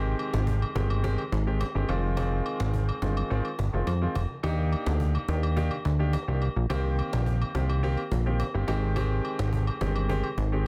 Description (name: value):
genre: afrobeats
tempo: 106 BPM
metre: 4/4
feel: straight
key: unclear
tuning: A4 = 443 Hz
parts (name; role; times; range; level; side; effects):
- clear concert grand piano; accompaniment; 0.0-10.7 s; Eb3 to G4; -34 LUFS; equal; none
- plucky analog bass; bass; 0.0-10.7 s; F1 to F2; -28 LUFS; equal; none
- agogo bells; percussion; 0.2-10.4 s; none; -42 LUFS; equal; none
- cajon; drums; 0.3-10.6 s; none; -41 LUFS; equal; none
room: studio reverb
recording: dense, heavily limited modern master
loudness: -28 LUFS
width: mono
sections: 0.0-10.7 A section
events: break 0.0-4.4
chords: 0.0 Abmaj7; 1.9 Fm7; 4.4 Ebmaj7; 6.7 Cm7; 8.7 Abmaj7